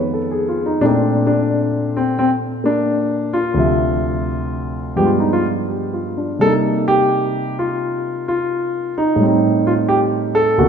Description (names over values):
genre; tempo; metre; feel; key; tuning
solo jazz; 87 BPM; 4/4; swing 66% on 8ths, rubato; unclear; A4 = 440 Hz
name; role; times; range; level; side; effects
dark concert grand piano; solo; 0.0-10.7 s; D2 to E5; -15 LUFS; equal; none
room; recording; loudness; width
wet concert hall reverb, RT60 2.4 s; recorded in a church or concert hall; -15 LUFS; side -7 dB against mid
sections
0.0-10.7 A section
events
none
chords
0.0 F7#9; 0.8 Bbmaj9; 3.6 Dm9; 5.0 G7b9; 6.4 Cm7; 9.2 Am7b5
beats
0.14 | 0.83 1.51 2.19 2.88 | 3.57 4.26 4.97 5.69 | 6.42 7.12 7.83 8.52 | 9.21 9.90 10.59